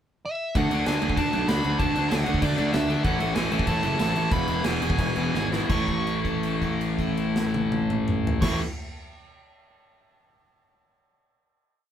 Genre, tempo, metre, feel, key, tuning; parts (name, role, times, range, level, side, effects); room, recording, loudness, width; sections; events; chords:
punk rock; 162-193 BPM; 4/4; straight; A major; A4 = 440 Hz
nasal lead guitar with a parked wah; melody; 0.3-8.6 s; D5 to C#6; -30 LUFS; equal; overdrive
distorted electric guitar; riff; 0.6-8.6 s; E2 to D4; -28 LUFS; left 5 dB; distortion
overdriven electric guitar; riff; 0.6-8.6 s; E2 to D4; -28 LUFS; right 3 dB
fuzz picked electric bass; bass; 0.6-8.6 s; E1 to D2; -29 LUFS; equal; overdrive
big rock drum kit; drums; 0.6-8.5 s; crash cymbal, kick drum, snare drum, toms; -29 LUFS; equal
moderate studio reverb, RT60 0.6 s; band playing live in one room; -22 LUFS; side -9 dB against mid
0.0-0.6 pickup bar; 0.6-5.7 chorus; 5.7-8.7 final chord
slowing down 3.1-5.7; drum fill 5.3-5.7; held note 5.7-8.4
0.0 N.C.; 0.6 D; 3.1 A5; 4.3 E; 5.7 A